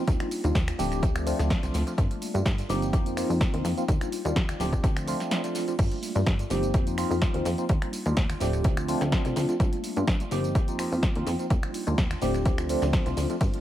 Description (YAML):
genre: filtered disco house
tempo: 126 BPM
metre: 4/4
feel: swing 54% on 16ths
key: unclear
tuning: A4 = 440 Hz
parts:
  - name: tine electric piano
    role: accompaniment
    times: 0.0-13.6 s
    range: F3 to G4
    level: -29 LUFS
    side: equal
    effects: medium tremolo, phaser, vintage 12-bit sampler grit, sidechain pumping, tape echo
  - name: plucky analog bass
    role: bass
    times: 0.1-13.5 s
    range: D1 to G2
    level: -29 LUFS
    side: equal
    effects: tube saturation, sidechain pumping
  - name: electronic kick drum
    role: drums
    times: 0.1-13.5 s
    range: none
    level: -25 LUFS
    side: equal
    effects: overdrive
  - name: punchy analog drum machine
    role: drums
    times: 0.1-13.6 s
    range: crash cymbal, finger snaps, hi-hat, ride cymbal, snare drum, tambourine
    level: -34 LUFS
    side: equal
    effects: overdrive, sidechain pumping on hats, sidechain pumping on perc, sidechain pumping on cymbals, tape echo
room: little or no reverb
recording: echo-heavy mix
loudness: -24 LUFS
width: side -12 dB against mid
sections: 0.0-13.6 A section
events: none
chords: 0.1 Ebmaj9; 0.8 Dm7; 2.0 Gm9; 2.9 F7sus4; 3.9 Ebmaj9; 4.6 Dm7; 5.8 Gm9; 6.7 F7sus4; 7.7 Ebmaj9; 8.4 Dm7; 9.6 Gm9; 10.6 F7sus4; 11.5 Ebmaj9; 12.2 Dm7